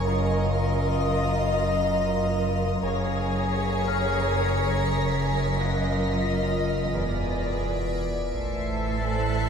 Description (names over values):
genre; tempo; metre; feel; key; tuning
cinematic; 87 BPM; 4/4; straight; Eb minor; A4 = 440 Hz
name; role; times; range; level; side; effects
muted symphonic violin section; melody; 0.0-9.5 s; Db5 to E5; -30 LUFS; left 2 dB; none
muted studio violin section; second line; 0.0-9.5 s; F4 to C5; -31 LUFS; left 1 dB; none
icy glass pad; sustained chords; 0.0-9.5 s; F4 to A5; -32 LUFS; equal; chorus, built-in reverb
muted symphonic cello section; bass; 0.0-9.5 s; E2 to A2; -31 LUFS; right 3 dB; none
muted symphonic double bass section; bass; 0.0-9.5 s; E1 to A1; -31 LUFS; right 2 dB; none
warm sub bass; drone; 0.0-9.5 s; E1 to A1; -33 LUFS; right 1 dB; none
concert harp; texture; 0.0-9.5 s; A5 to B6; -38 LUFS; left 3 dB; none
muted symphonic violin section; texture; 0.0-9.5 s; Bb5 to C7; -38 LUFS; equal; none
marimba with hard mallets; riff; 0.1-9.5 s; E2 to A3; -33 LUFS; left 3 dB; none
muted symphonic viola section; accompaniment; 8.4-9.5 s; A4; -32 LUFS; left 1 dB; none
room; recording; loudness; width
wet church reverb, RT60 2.9 s; minimal, uncompressed stereo recording; -23 LUFS; side -7 dB against mid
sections
0.0-8.3 A section; 8.3-9.5 B section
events
none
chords
0.1 Ebmadd9/Gb; 2.8 Gbadd9; 5.6 Ebmadd9/Gb; 7.0 E7; 8.3 Am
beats
| 0.07 0.76 1.45 2.14 | 2.83 3.52 4.21 4.90 | 5.59 6.28 6.96 7.66 | 8.34 9.03